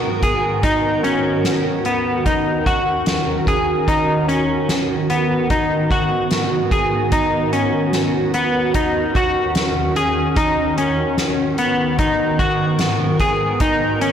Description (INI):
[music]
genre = dream pop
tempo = 74 BPM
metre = 4/4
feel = straight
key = G# minor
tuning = A4 = 438 Hz
[part]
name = granular cloud pad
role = sustained chords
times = 0.0-14.1 s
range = D#2 to A#4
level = -20 LUFS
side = right 1 dB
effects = built-in reverb
[part]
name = semi-hollow electric guitar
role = arpeggios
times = 0.0-14.1 s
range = B3 to G#4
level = -18 LUFS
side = left 1 dB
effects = analog chorus, tape echo
[part]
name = soft-mallet drum kit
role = drums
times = 0.2-14.1 s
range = hi-hat, kick drum, snare drum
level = -23 LUFS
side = equal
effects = none
[sound]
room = wet concert hall reverb, RT60 2.2 s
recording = blown-out, overdriven recording, overdrive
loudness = -16 LUFS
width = side -8 dB against mid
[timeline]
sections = 0.0-14.1 A section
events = none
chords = 0.0 G#m7; 0.6 D#m7; 3.9 G#m7; 7.1 D#m7; 10.4 G#m7; 13.6 D#m7